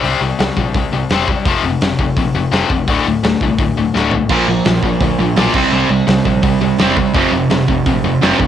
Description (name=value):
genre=punk rock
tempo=169 BPM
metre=4/4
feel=straight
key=unclear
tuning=A4 = 442 Hz
part: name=tight distorted guitar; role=riff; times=0.0-8.5 s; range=D2 to C4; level=-16 LUFS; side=left 7 dB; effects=distortion
part: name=overdriven picked electric bass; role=bass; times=0.0-8.5 s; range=D1 to D2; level=-22 LUFS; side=equal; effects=none
part: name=big rock drum kit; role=drums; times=0.0-8.5 s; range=crash cymbal, hi-hat, kick drum, snare drum, toms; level=-19 LUFS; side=equal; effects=cassette tape
part: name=sludgy distorted guitar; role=riff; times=4.3-8.5 s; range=F2 to C4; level=-14 LUFS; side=right 8 dB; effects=overdrive
room=little or no reverb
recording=home recording on cassette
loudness=-12 LUFS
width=side -10 dB against mid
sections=0.0-8.5 A section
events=drum fill 3.9-4.3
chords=0.0 C; 1.5 F5; 2.9 D5; 4.3 Bb5; 5.5 C; 7.1 F5